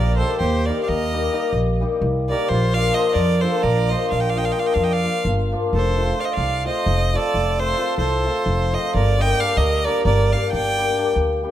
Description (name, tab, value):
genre	balkan folk, Balkan wedding band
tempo	261 BPM (eighths)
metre	7/8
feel	straight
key	unclear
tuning	A4 = 440 Hz
part	clear violin	melody	0.0-11.1 s	C5 to G5	-24 LUFS	right 1 dB	tape echo
part	accordion	second line	0.0-11.1 s	F4 to Eb5	-27 LUFS	right 6 dB	none
part	hammered dulcimer	accompaniment	0.0-11.5 s	F3 to G4	-23 LUFS	left 3 dB	none
part	upright bass	bass	0.0-11.4 s	F1 to F2	-21 LUFS	equal	none
room	moderate recital hall reverb, RT60 1.4 s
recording	close, detailed microphones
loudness	-17 LUFS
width	side -11 dB against mid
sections	0.0-5.7 A section; 5.7-11.5 A section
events	none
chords	0.0 Eb; 2.5 Bb; 5.7 F; 8.9 Gm